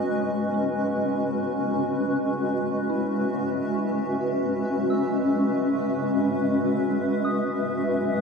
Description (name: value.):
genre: ambient.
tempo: free time.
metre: none.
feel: none.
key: E major.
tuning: A4 = 438 Hz.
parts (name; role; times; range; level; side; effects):
granular cloud pad; sustained chords; 0.0-8.2 s; G#3 to E5; -23 LUFS; equal; built-in reverb.
soft synth bell; arpeggios; 0.5-8.2 s; C#4 to E6; -37 LUFS; right 1 dB; none.
room: wet cathedral reverb, RT60 6.2 s.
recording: in a vast, echoing space.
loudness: -22 LUFS.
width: side -5 dB against mid.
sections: 0.0-8.2 A section.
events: none.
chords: 0.0 E.